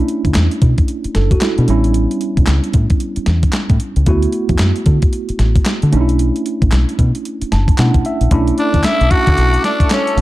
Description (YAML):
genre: R&B, new jack swing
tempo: 113 BPM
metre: 4/4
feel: swing 61% on 16ths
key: B minor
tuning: A4 = 441 Hz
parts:
  - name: mellow tine electric piano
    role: accompaniment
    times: 0.0-10.2 s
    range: G3 to A5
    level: -19 LUFS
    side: right 2 dB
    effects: medium stereo tremolo
  - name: crisp 8-bit digital drum machine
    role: drums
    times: 0.1-10.2 s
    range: handclaps, hi-hat, kick drum, snare drum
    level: -16 LUFS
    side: equal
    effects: none
  - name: deep dub fingered electric bass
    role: bass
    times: 0.2-10.2 s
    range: F#1 to D3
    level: -14 LUFS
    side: equal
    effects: none
  - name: lush unison pad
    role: sustained chords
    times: 8.3-10.2 s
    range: A4 to D6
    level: -24 LUFS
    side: left 2 dB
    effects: chorus
  - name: raspy tenor saxophone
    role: melody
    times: 8.6-10.2 s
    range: C#4 to F#4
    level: -16 LUFS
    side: left 1 dB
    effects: none
room: digital ambience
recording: dark, warm production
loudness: -12 LUFS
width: side -16 dB against mid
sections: 0.0-8.3 A section; 8.3-10.2 B section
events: tine electric piano fill 7.3-8.3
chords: 0.0 Bm11 (rootless); 1.7 A7; 4.1 D6; 5.9 Bm11